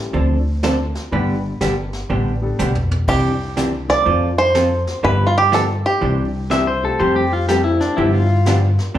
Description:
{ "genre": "country, western swing", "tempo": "122 BPM", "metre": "4/4", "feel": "swing 66% on 8ths", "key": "unclear", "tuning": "A4 = 440 Hz", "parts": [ { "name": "warm upright piano", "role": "accompaniment", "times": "0.0-8.0 s", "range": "F3 to B4", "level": "-27 LUFS", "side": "left 3 dB", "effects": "slapback echo" }, { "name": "vintage hollow-body jazz guitar", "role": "accompaniment", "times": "0.1-9.0 s", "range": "C3 to A4", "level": "-21 LUFS", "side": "right 2 dB", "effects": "slapback echo" }, { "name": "upright bass", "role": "bass", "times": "0.1-9.0 s", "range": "G1 to G2", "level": "-20 LUFS", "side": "equal", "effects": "none" }, { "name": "vintage brush drum kit", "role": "drums", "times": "0.1-9.0 s", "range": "brushed snare drum, crash cymbal, hi-hat, kick drum, snare drum, toms", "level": "-27 LUFS", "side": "left 1 dB", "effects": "none" }, { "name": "bluegrass banjo", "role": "melody", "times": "3.1-6.5 s", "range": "F4 to D5", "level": "-17 LUFS", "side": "right 2 dB", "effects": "slapback echo" }, { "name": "pedal steel guitar", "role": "second line", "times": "6.5-8.6 s", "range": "D4 to E5", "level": "-19 LUFS", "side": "left 4 dB", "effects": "slapback echo" } ], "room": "light reverb, small room ambience", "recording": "live gig heard through the venue's PA, club reverb", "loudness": "-15 LUFS", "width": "side -11 dB against mid", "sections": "0.0-9.0 A section", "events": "drum fill 2.6-3.1", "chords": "0.1 Dm7; 1.1 G; 3.1 Cadd9; 4.1 F; 5.0 G7; 6.0 Cadd9; 7.0 Fadd9; 8.0 G7" }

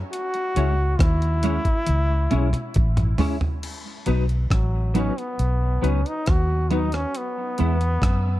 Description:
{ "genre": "roots reggae", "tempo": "68 BPM", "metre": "4/4", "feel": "straight", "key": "B mixolydian", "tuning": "A4 = 443 Hz", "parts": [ { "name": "bright trombone", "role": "melody", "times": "0.1-8.4 s", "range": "F#3 to F#4", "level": "-28 LUFS", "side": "equal", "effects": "dub echo" }, { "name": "breakbeat sampler-style drum kit", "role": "drums", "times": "0.1-8.2 s", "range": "crash cymbal, hi-hat, kick drum, rim click, toms", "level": "-23 LUFS", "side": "equal", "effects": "none" }, { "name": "semi-hollow electric guitar", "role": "accompaniment", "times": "0.6-7.8 s", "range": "F#3 to E4", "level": "-29 LUFS", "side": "right 3 dB", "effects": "ensemble chorus, dub echo" }, { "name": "barky reed electric piano", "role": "stabs", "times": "0.6-7.8 s", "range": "B3 to C#5", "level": "-32 LUFS", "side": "left 7 dB", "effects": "overdrive, fast tremolo" }, { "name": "vintage muted fingered electric bass", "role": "bass", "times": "0.6-8.4 s", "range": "A1 to F#2", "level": "-21 LUFS", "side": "equal", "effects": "none" } ], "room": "little or no reverb", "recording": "dark, warm production", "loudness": "-20 LUFS", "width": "side -15 dB against mid", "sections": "0.0-3.6 A section; 3.6-8.4 B section", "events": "drum fill 1.9-3.6; trombone solo 3.6-8.4", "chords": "0.1 C#m; 3.6 B; 7.1 E" }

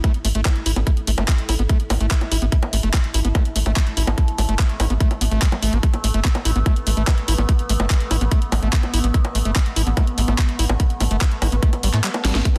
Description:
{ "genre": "psychedelic trance", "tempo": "145 BPM", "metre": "4/4", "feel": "straight", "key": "unclear", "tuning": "A4 = 435 Hz", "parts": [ { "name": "overtone-sweeping drone", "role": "sustained chords", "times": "0.0-12.6 s", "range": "A3 to E4", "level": "-34 LUFS", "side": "equal", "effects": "chorus, built-in reverb, phaser, sidechain pumping" }, { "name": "screaming distorted acid line", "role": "riff", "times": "0.0-12.5 s", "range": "G3 to E4", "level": "-30 LUFS", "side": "equal", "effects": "distortion, chorus, sidechain pumping, tape echo" }, { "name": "electronic kick drum", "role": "drums", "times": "0.0-12.5 s", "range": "none", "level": "-20 LUFS", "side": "equal", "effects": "overdrive, studio reverb" }, { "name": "garage drum kit", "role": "drums", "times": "0.0-12.6 s", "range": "bongos, handclaps, hi-hat, snare drum", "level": "-28 LUFS", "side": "equal", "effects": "overdrive, studio reverb" }, { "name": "tight sequencer bass", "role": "bass", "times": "0.2-12.4 s", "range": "G1 to A2", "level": "-22 LUFS", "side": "equal", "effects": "none" } ], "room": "little or no reverb", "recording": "dense, heavily limited modern master", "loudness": "-19 LUFS", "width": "mono", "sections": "0.0-12.6 A section", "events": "kick drops out 12.0-12.5; drum fill 12.2", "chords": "0.0 A5" }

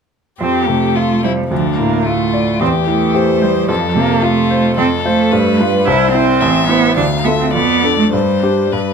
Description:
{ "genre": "quick classical-period movement for piano trio", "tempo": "110 BPM", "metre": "2/4", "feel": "rubato", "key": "F major", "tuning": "A4 = 440 Hz", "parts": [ { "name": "clear violin", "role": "melody", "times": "0.4-8.9 s", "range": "D4 to F5", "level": "-18 LUFS", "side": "left 10 dB", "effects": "none" }, { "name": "rich cello", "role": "second line", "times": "0.4-8.7 s", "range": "F3 to E4", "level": "-16 LUFS", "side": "right 5 dB", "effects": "none" }, { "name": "bright baby grand piano", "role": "accompaniment", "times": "0.4-8.9 s", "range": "A1 to D5", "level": "-16 LUFS", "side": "equal", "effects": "none" } ], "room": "light reverb", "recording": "none", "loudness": "-12 LUFS", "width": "side -6 dB against mid", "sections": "0.4-8.9 A section", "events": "none", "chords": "0.4 F; 1.5 Dm; 2.6 C/E; 3.7 F; 5.3 G7; 5.9 C; 6.4 Am; 7.0 Dm; 7.5 Dm/F; 8.1 Gsus4" }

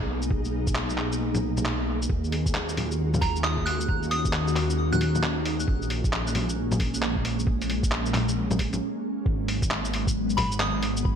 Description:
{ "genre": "future garage", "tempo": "134 BPM", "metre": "4/4", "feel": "swing 63% on 16ths", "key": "G# dorian", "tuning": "A4 = 438 Hz", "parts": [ { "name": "ethereal airy pad", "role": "sustained chords", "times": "0.0-11.2 s", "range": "D#3 to F#4", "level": "-30 LUFS", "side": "equal", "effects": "ensemble chorus, built-in reverb, sidechain pumping" }, { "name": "dark detuned saw bass", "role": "bass", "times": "0.0-11.2 s", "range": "G#1 to D#2", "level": "-29 LUFS", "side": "equal", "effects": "sidechain pumping" }, { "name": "electronic kick drum", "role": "drums", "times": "0.0-11.2 s", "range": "none", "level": "-27 LUFS", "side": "equal", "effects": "studio reverb" }, { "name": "flickering grainy texture", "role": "texture", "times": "0.0-8.8 s", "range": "G#3 to G#4", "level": "-39 LUFS", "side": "equal", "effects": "built-in reverb, ensemble chorus" }, { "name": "lo-fi sampler-style drum kit", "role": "drums", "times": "0.2-11.0 s", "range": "bongos, handclaps, hi-hat, shaker", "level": "-29 LUFS", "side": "left 1 dB", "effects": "studio reverb, gated reverb" }, { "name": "soft synth bell", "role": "melody", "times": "3.2-5.2, 10.4-10.8 s", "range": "A#5 to F#6", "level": "-31 LUFS", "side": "right 2 dB", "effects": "chorus, phaser, ping-pong delay" } ], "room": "light reverb", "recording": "bright 1980s-style digital production", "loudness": "-23 LUFS", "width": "side -8 dB against mid", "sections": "0.0-9.3 A section; 9.3-11.2 B section", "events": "break 8.8-9.3", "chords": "0.0 Bmaj7; 2.1 D#m9; 5.7 A#m7; 9.3 G#m7" }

